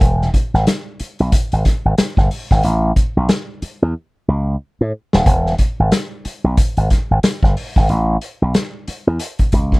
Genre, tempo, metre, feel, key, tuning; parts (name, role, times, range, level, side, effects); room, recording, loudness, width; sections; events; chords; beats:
funk; 91 BPM; 4/4; swing 60% on 16ths; E major; A4 = 439 Hz
slap bass with an envelope filter; bass; 0.0-9.8 s; D#1 to A2; -15 LUFS; equal
vintage drum kit; drums; 0.0-9.8 s; hi-hat, kick drum, snare drum; -16 LUFS; equal
little or no reverb; -15 LUFS; side -25 dB against mid
0.0-9.8 A section
drum fill 4.0-5.3
| 0.01 0.67 1.32 1.98 | 2.64 3.29 3.95 4.61 | 5.26 5.92 6.58 7.23 | 7.89 8.54 9.20